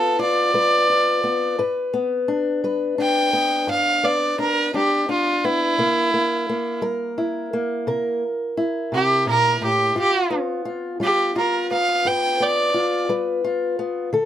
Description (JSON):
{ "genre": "acoustic country blues, solo or duo", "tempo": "57 BPM (dotted quarters)", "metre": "12/8", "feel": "straight", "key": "G mixolydian", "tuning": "A4 = 444 Hz", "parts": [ { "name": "clear fiddle", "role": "melody", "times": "0.0-13.1 s", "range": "E4 to G5", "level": "-19 LUFS", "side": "right 2 dB", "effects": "none" }, { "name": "fingerpicked old ladder-braced acoustic guitar", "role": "accompaniment", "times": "0.0-14.3 s", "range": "G2 to B4", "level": "-22 LUFS", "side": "left 2 dB", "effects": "none" } ], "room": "little or no reverb", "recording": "close, detailed microphones", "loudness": "-18 LUFS", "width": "side -11 dB against mid", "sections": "0.0-14.3 A section", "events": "none", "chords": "0.0 G7; 5.8 C7; 10.0 G7", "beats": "0.54 | 1.59 2.64 3.69 4.74 | 5.79 6.83 7.88 8.92 | 9.96 11.01 12.05 13.09 | 14.13" }